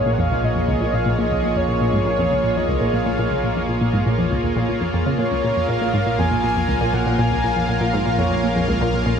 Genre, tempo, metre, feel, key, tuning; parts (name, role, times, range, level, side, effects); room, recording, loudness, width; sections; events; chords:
ambient, sequencer-driven space music; 120 BPM; 4/4; straight; Bb minor; A4 = 442 Hz
breathy flute-like synth lead; melody; 0.0-8.7 s; Db5 to Ab5; -24 LUFS; equal; lush chorus, ping-pong delay
lush unison pad; sustained chords; 0.0-9.2 s; Bb3 to F5; -23 LUFS; equal; chorus
analog drone; bass; 0.0-9.2 s; Bb1; -26 LUFS; right 1 dB; chorus
bubbling stepped-filter texture; texture; 0.0-9.2 s; Ab4 to Ab5; -37 LUFS; right 2 dB
analog pluck; riff; 0.1-9.1 s; Db2 to Db3; -22 LUFS; equal; chorus, ping-pong delay
wet huge ambient reverb, RT60 7.6 s; -17 LUFS; side -7 dB against mid
0.0-9.2 A section
filter sweep on synth arpeggio sound 0.0-9.2
0.0 Bbm7